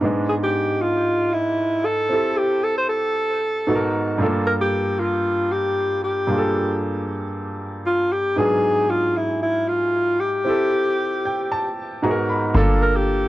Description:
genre	amapiano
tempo	115 BPM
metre	4/4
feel	swing 55% on 16ths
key	unclear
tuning	A4 = 440 Hz
part	warm baby grand piano	accompaniment	0.0-13.3 s	G2 to Cb6	-23 LUFS	right 1 dB	none
part	breathy alto saxophone	melody	0.3-13.3 s	E4 to C5	-21 LUFS	left 1 dB	tape echo
part	deep log drum bass	bass	12.5-13.3 s	G1	-18 LUFS	equal	none
room	light reverb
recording	home recording on cassette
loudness	-18 LUFS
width	side -16 dB against mid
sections	0.0-12.5 A section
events	grand piano fill 11.0-12.5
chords	0.0 E7/G#; 2.1 Am7; 3.7 Abm7; 4.2 Gm7; 8.4 G#m7b5; 10.5 Am7; 12.0 Abm7; 12.5 Gm7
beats	| 0.03 0.55 1.07 1.59 | 2.11 2.63 3.16 3.68 | 4.20 4.72 5.24 5.76 | 6.29 6.81 7.33 7.85 | 8.37 8.89 9.42 9.94 | 10.46 10.98 11.50 12.03 | 12.55 13.07

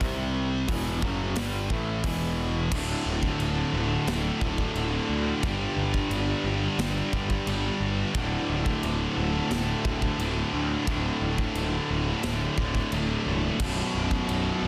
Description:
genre	heavy metal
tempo	88 BPM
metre	4/4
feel	straight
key	unclear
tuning	A4 = 440 Hz
part	scooped high-gain guitar	riff	0.0-14.7 s	B1 to C4	-35 LUFS	equal	distortion
part	tight distorted guitar	riff	0.0-14.7 s	B1 to C4	-34 LUFS	equal	distortion
part	fuzz picked electric bass	bass	0.0-14.7 s	B0 to D2	-32 LUFS	equal	overdrive
part	big rock drum kit	drums	0.0-14.4 s	china cymbal, crash cymbal, hi-hat, kick drum, snare drum	-35 LUFS	equal	none
part	heavy high-gain guitar	riff	2.7-14.7 s	B1 to G4	-36 LUFS	equal	distortion
room	light reverb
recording	dense, heavily limited modern master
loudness	-27 LUFS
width	mono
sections	0.0-2.7 A section; 2.7-14.7 B section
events	none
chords	0.0 C5; 0.7 E5; 2.7 D; 5.4 G; 8.2 D; 13.6 Bm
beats	| 0.01 0.69 1.37 2.04 | 2.72 3.40 4.08 4.75 | 5.43 6.11 6.79 7.47 | 8.15 8.83 9.51 10.19 | 10.87 11.55 12.23 12.92 | 13.60 14.28

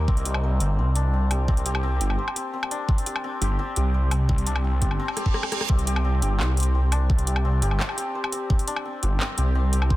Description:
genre	half-time drum and bass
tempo	171 BPM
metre	4/4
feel	half-time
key	unclear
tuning	A4 = 439 Hz
part	santur	arpeggios	0.0-10.0 s	G3 to C5	-30 LUFS	left 2 dB	tape echo
part	phased detuned saw bass	bass	0.0-10.0 s	G1 to C2	-22 LUFS	equal	phaser
part	electronic kick drum	drums	0.1-10.0 s	none	-22 LUFS	equal	none
part	drum and bass drum kit	drums	0.2-9.9 s	handclaps, hi-hat, rim click, woodblock	-30 LUFS	left 1 dB	none
part	reverse cymbal	sound effects	5.2-5.7 s	none	-32 LUFS	right 8 dB	none
room	little or no reverb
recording	dense, heavily limited modern master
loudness	-21 LUFS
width	side -16 dB against mid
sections	0.0-10.0 A section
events	reverse cymbal 5.2-5.7; drum fill 5.2-5.7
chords	0.0 C5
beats	| 0.08 0.43 0.78 1.13 | 1.48 1.83 2.19 2.54 | 2.89 3.24 3.59 3.94 | 4.29 4.64 4.99 5.34 | 5.70 6.05 6.40 6.75 | 7.10 7.45 7.80 8.15 | 8.50 8.85 9.20 9.55 | 9.90

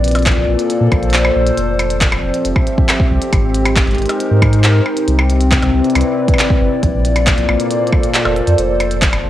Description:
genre	IDM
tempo	137 BPM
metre	4/4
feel	straight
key	F major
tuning	A4 = 442 Hz
part	warbly tape-like pad	sustained chords	0.0-9.3 s	Bb2 to E5	-16 LUFS	left 1 dB	chorus, built-in reverb, sidechain pumping, cassette tape
part	warm sub bass	bass	0.0-9.3 s	F1 to Bb2	-15 LUFS	equal	none
part	glitchy drum kit	drums	0.0-9.2 s	handclaps, hi-hat, percussion blips	-18 LUFS	equal	studio reverb, cassette tape, analog delay
part	electronic kick drum	drums	0.3-9.1 s	none	-16 LUFS	equal	studio reverb, cassette tape
room	moderate booth ambience, RT60 0.2 s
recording	home recording on cassette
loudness	-12 LUFS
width	side -13 dB against mid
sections	0.0-9.3 A section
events	none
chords	0.0 Bbmaj9; 1.6 Fmaj9; 3.3 Abmaj9; 4.9 Cmaj9; 6.8 Bbmaj9; 8.6 F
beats	0.26 0.70 1.14 | 1.57 2.01 2.45 2.89 | 3.33 3.77 4.20 4.64 | 5.08 5.52 5.95 6.39 | 6.83 7.27 7.71 8.14 | 8.58 9.02

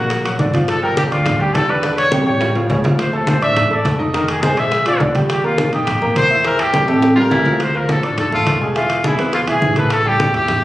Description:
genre	latin, salsa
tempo	208 BPM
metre	4/4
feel	straight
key	D minor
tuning	A4 = 440 Hz
part	clear trumpet	melody	0.0-10.6 s	E4 to E5	-18 LUFS	left 1 dB	none
part	clear grand piano	accompaniment	0.0-10.6 s	C#3 to E6	-20 LUFS	right 1 dB	none
part	upright bass	bass	0.0-10.6 s	E1 to E2	-23 LUFS	equal	none
part	bongos	percussion	0.1-10.6 s	none	-27 LUFS	left 3 dB	none
part	congas	percussion	0.1-10.6 s	none	-22 LUFS	equal	none
part	timbales	percussion	0.1-10.6 s	none	-23 LUFS	right 1 dB	none
part	raspy baritone saxophone	second line	7.2-7.6 s	E4 to F4	-22 LUFS	equal	none
room	wet recital hall reverb, RT60 1.6 s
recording	recorded on a phone in the room, club reverb, compression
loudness	-14 LUFS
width	side -15 dB against mid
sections	0.0-7.6 A section; 7.6-10.6 B section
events	drum fill 2.1-3.0, 6.9-7.6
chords	0.0 Daug; 0.7 G5; 1.8 Em7; 2.4 Aaug7; 3.0 Dm; 4.1 Fm7; 4.7 Bb7; 5.3 Eb; 6.4 Gm69; 7.0 A5; 7.6 Dm; 8.8 E; 9.9 A7(no3)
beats	0.10 0.39 | 0.68 0.97 1.26 1.55 | 1.84 2.12 2.41 2.70 | 2.99 3.28 3.57 3.85 | 4.14 4.43 4.72 5.01 | 5.30 5.58 5.87 6.16 | 6.45 6.74 7.03 7.31 | 7.60 7.89 8.18 8.47 | 8.76 9.04 9.33 9.62 | 9.91 10.20 10.49

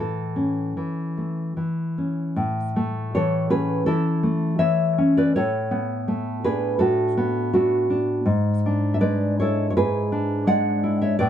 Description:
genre	romantic piece for solo classical guitar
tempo	82 BPM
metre	4/4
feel	uneven beats, rubato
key	A major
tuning	A4 = 439 Hz
part	nylon-string guitar	solo	0.0-11.3 s	G#2 to F#5	-20 LUFS	equal	none
room	light reverb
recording	none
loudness	-20 LUFS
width	side -10 dB against mid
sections	0.0-2.4 A section; 2.4-11.3 A section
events	none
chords	0.0 A; 5.4 Bm7/A; 8.3 E7/G#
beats	0.77 1.57 | 2.38 3.14 3.88 4.62 | 5.37 6.09 6.82 7.56 | 8.29 9.03 9.76 10.48 | 11.19

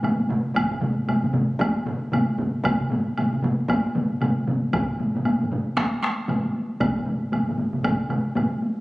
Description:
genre	japanese traditional, taiko drum ensemble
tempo	115 BPM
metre	4/4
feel	swing 60% on 16ths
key	none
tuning	none
part	solo taiko drums	percussion	0.0-8.8 s	none	-24 LUFS	equal	none
part	taiko ensemble	percussion	0.0-8.5 s	none	-31 LUFS	equal	none
part	taiko ensemble	percussion	0.0-8.5 s	none	-28 LUFS	right 1 dB	none
part	woodblock	percussion	0.0-8.5 s	none	-30 LUFS	right 1 dB	none
part	taiko ensemble	percussion	0.5-8.0 s	none	-30 LUFS	equal	none
room	wet recital hall reverb, RT60 1.5 s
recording	recorded on a phone in the room, club reverb, compression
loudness	-21 LUFS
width	side -20 dB against mid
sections	0.0-8.8 A section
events	none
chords	none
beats	0.03 | 0.55 1.08 1.60 2.12 | 2.64 3.16 3.68 4.21 | 4.72 5.25 5.76 6.28 | 6.80 7.32 7.84 8.36

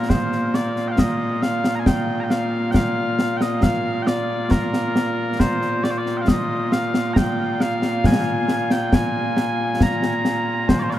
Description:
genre	scottish traditional, Scottish pipe music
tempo	68 BPM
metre	3/4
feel	straight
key	Bb mixolydian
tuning	A4 = 440 Hz
part	mellow small bagpipes	melody	0.0-11.0 s	Bb2 to Bb5	-21 LUFS	equal	none
part	concert snare drum and concert bass drum	drums	0.1-11.0 s	none	-21 LUFS	equal	none
room	moderate huge ambient reverb, RT60 8.2 s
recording	heard from further back in the room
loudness	-18 LUFS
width	side -13 dB against mid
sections	0.1-10.7 A section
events	none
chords	none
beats	| 0.10 0.98 1.87 | 2.75 3.63 4.51 | 5.40 6.28 7.16 | 8.04 8.93 9.81 | 10.69

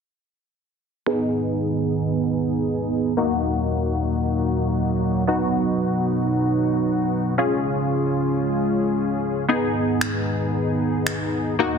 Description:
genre	dance-pop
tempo	114 BPM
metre	4/4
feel	straight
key	G# dorian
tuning	A4 = 440 Hz
part	funky polysynth comp	accompaniment	1.1-11.8 s	A#3 to G#4	-23 LUFS	left 2 dB	chorus, low-pass filter
part	chorused pulse-width pad	sustained chords	1.1-11.8 s	D#2 to E#4	-23 LUFS	right 2 dB	low-pass filter
part	electronic finger snaps	drums	10.0-11.2 s	none	-28 LUFS	equal	soft clipping on snare
room	moderate plate reverb, RT60 1.4 s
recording	dense, heavily limited modern master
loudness	-20 LUFS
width	side -6 dB against mid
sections	1.1-11.8 A section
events	filter sweep 1.1-11.8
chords	1.1 G#m; 3.2 D#m; 5.3 B; 7.4 C#; 9.5 G#m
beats	| 1.07 1.59 2.12 2.65 | 3.17 3.70 4.23 4.75 | 5.28 5.80 6.33 6.86 | 7.38 7.91 8.44 8.96 | 9.49 10.02 10.54 11.07 | 11.60

